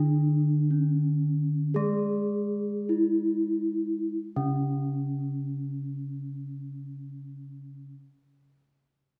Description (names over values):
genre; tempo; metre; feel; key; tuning
gamelan; 46-63 BPM; 4/4; straight; unclear; A4 = 440 Hz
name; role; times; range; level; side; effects
gamelan-type bronze metallophone; melody; 0.0-7.9 s; C#4 to G#4; -32 LUFS; equal; none
gamelan-type bronze metallophone; accompaniment; 0.0-7.9 s; C#3 to G#3; -31 LUFS; equal; none
room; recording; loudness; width
wet recital hall reverb, RT60 1.6 s; none; -28 LUFS; mono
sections
0.0-4.2 A section; 4.2-9.2 B section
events
slowing down 0.0-4.2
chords
none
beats
0.72 1.76 2.91 | 4.16 5.47 6.79